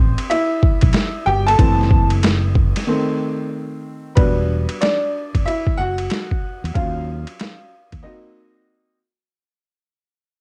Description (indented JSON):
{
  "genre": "hip hop, jazz-hop",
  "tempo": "93 BPM",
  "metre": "4/4",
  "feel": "swing 64% on 16ths",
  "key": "unclear",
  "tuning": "A4 = 437 Hz",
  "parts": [
    { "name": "clear upright piano", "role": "accompaniment", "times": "0.0-9.0 s", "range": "Eb3 to A5", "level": "-23 LUFS", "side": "equal", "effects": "cassette tape" },
    { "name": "mellow fretless electric bass", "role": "bass", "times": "0.0-8.0 s", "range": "E1 to E2", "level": "-22 LUFS", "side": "equal", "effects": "tube saturation" },
    { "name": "boom bap sampler-style drum kit", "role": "drums", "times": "0.2-8.0 s", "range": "hi-hat, kick drum, ride cymbal, snare drum", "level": "-20 LUFS", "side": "equal", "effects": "overdrive, cassette tape" }
  ],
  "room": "light reverb",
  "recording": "home recording on cassette",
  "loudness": "-18 LUFS",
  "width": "mono",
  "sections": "0.0-4.2 A section; 4.2-9.3 B section",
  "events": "upright piano solo 0.0-4.2, 4.2-9.3; break 2.9-4.2, 8.0-9.3; fade-out 4.2-9.3",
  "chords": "0.0 Am7; 1.6 F#m7b5; 2.9 Adim/Eb; 4.2 Em9; 6.7 D#m9; 8.0 D#m6/A#"
}